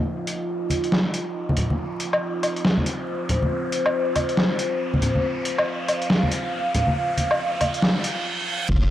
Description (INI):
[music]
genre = deep dubstep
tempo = 139 BPM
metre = 4/4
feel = swing 62% on 16ths, half-time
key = unclear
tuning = A4 = 439 Hz
[part]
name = deep dark ambient pad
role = sustained chords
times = 0.0-8.9 s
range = F4 to F5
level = -26 LUFS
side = equal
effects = chorus, built-in reverb
[part]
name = riser and reverse cymbal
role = sound effects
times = 0.0-8.7 s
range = none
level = -32 LUFS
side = right 1 dB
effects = none
[part]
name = trip hop sampler-style drum kit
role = drums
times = 0.3-8.8 s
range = crash cymbal, hi-hat, snare drum, woodblock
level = -23 LUFS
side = equal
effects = none
[part]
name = congas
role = percussion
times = 0.7-7.7 s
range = none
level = -25 LUFS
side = equal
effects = none
[part]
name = deep soft wobble bass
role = bass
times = 8.7-8.9 s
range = F1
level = -20 LUFS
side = equal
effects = chorus
[part]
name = electronic kick drum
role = drums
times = 8.7-8.8 s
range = none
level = -22 LUFS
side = equal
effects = none
[sound]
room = moderate spring reverb, RT60 2.0 s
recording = dry, gritty hardware recording, transformer saturation, vinyl crackle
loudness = -21 LUFS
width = side -12 dB against mid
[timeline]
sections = 0.0-8.7 A section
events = build-up 0.0-8.7; riser 0.0-8.3; reverse cymbal 7.8-8.7; stop 8.3-8.7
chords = 0.0 F5